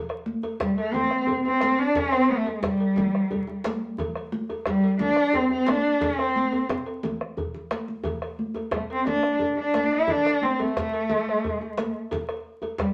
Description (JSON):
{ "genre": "west african traditional, West African drum ensemble", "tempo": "118 BPM (dotted quarters)", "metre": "12/8", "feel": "straight", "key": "C major pentatonic", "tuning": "A4 = 439 Hz", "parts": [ { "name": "bombo", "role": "percussion", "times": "0.1-12.9 s", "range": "none", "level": "-36 LUFS", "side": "equal", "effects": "none" }, { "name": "cowbell", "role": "percussion", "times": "0.1-12.8 s", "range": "none", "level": "-38 LUFS", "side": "equal", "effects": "none" }, { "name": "congas", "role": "percussion", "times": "0.3-12.9 s", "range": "none", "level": "-36 LUFS", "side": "equal", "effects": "none" }, { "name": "djembe", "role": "percussion", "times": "0.4-12.9 s", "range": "none", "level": "-38 LUFS", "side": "equal", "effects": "none" }, { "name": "warm cello", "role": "melody", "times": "0.6-12.9 s", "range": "G3 to E4", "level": "-25 LUFS", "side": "equal", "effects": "none" } ], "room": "moderate studio reverb, RT60 0.7 s", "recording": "vinyl crackle", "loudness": "-25 LUFS", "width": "mono", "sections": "0.0-12.9 A section", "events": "drum fill 7.4-8.1", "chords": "none" }